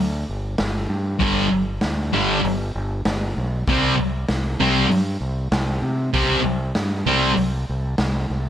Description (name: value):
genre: garage rock duo or trio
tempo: 97 BPM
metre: 4/4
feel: straight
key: unclear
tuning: A4 = 440 Hz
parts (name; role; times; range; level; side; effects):
- growling fingered electric bass; bass; 0.0-8.5 s; G1 to C3; -24 LUFS; equal; overdrive
- raw garage drum kit; drums; 0.6-8.1 s; hi-hat, kick drum, snare drum; -26 LUFS; equal; none
- thick fuzz guitar; riff; 1.2-7.3 s; G2 to C4; -19 LUFS; equal; distortion
room: light reverb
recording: none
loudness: -19 LUFS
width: side -10 dB against mid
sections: 0.0-8.5 A section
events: none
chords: 0.0 G5; 3.7 C5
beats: 0.59 | 1.21 1.82 2.44 3.06 | 3.68 4.30 4.91 5.53 | 6.14 6.76 7.37 7.99